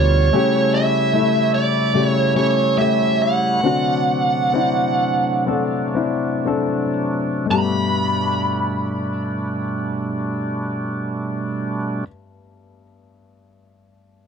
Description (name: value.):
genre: pop ballad.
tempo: 56-75 BPM.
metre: 4/4.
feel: straight.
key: G major.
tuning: A4 = 435 Hz.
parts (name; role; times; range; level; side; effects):
bluesy overdriven lead guitar; melody; 0.0-12.1 s; C#5 to B5; -20 LUFS; right 4 dB; distortion.
warm baby grand piano; accompaniment; 0.0-14.3 s; G2 to A4; -21 LUFS; left 7 dB; none.
bright tonewheel organ; sustained chords; 0.0-12.0 s; B2 to F4; -23 LUFS; right 2 dB; slow rotary speaker.
room: light reverb.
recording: dry, close 1970s-style studio recording.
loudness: -17 LUFS.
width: side -6 dB against mid.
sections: 0.0-7.5 A section; 7.5-11.8 B section.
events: slowing down 0.3-7.5.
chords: 0.3 A7/C#; 3.6 D7; 7.5 Gadd9.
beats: | 0.33 1.13 1.95 2.78 | 3.64 4.54 5.47 6.45 | 7.50 8.58 9.66 10.74.